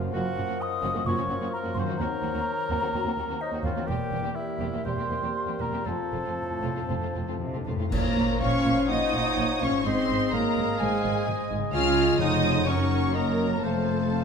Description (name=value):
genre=classical, dramatic, fast romantic movement for symphony orchestra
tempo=114-130 BPM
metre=4/4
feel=rubato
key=Bb minor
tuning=A4 = 440 Hz
part: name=rich symphonic violin section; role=melody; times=0.0-14.2 s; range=F4 to F6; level=-33 LUFS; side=left 3 dB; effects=none
part: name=dark clarinet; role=second line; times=0.0-14.2 s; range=Bb4 to F5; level=-38 LUFS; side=left 3 dB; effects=none
part: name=warm symphonic violin section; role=second line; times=0.0-14.2 s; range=C4 to F5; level=-37 LUFS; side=left 4 dB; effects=none
part: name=mellow bassoon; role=accompaniment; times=0.0-14.2 s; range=F3 to Ab3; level=-36 LUFS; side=equal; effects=none
part: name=rich symphonic viola section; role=accompaniment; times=0.0-14.2 s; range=Ab3 to F4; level=-33 LUFS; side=right 3 dB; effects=none
part: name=concert harp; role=arpeggios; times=0.0-14.2 s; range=F2 to F5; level=-37 LUFS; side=left 8 dB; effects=none
part: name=rich symphonic cello section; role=bass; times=0.0-14.2 s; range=Eb2 to Db3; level=-34 LUFS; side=right 3 dB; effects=none
part: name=warm symphonic double bass section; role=bass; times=0.0-14.2 s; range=E1 to Eb2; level=-32 LUFS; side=right 4 dB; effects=none
part: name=mellow hollow silver concert flute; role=second line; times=0.1-14.2 s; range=C5 to Eb6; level=-33 LUFS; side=left 1 dB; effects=none
part: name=warm oboe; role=second line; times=0.1-14.2 s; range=Eb4 to Eb5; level=-37 LUFS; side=right 1 dB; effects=none
part: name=mellow French horn section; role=sustained chords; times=0.1-14.2 s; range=Ab3 to G4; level=-31 LUFS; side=left 2 dB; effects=none
part: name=timpani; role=percussion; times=5.8-8.6 s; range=F2 to Bb2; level=-35 LUFS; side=left 2 dB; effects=none
part: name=clash cymbals and concert bass drum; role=percussion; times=7.9-8.9 s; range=none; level=-34 LUFS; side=equal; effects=none
room=moderate scoring stage reverb, RT60 1.9 s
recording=none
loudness=-24 LUFS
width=side -6 dB against mid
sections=0.0-7.9 A section; 7.9-14.2 B section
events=timpani fill 5.9-7.9; band accent 7.9-8.4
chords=0.0 Gbmaj7; 2.0 Cm7b5/Eb; 3.9 C7/E; 5.9 F; 7.9 Bbm; 9.8 Ab; 11.7 Db; 12.7 Gb6; 13.6 F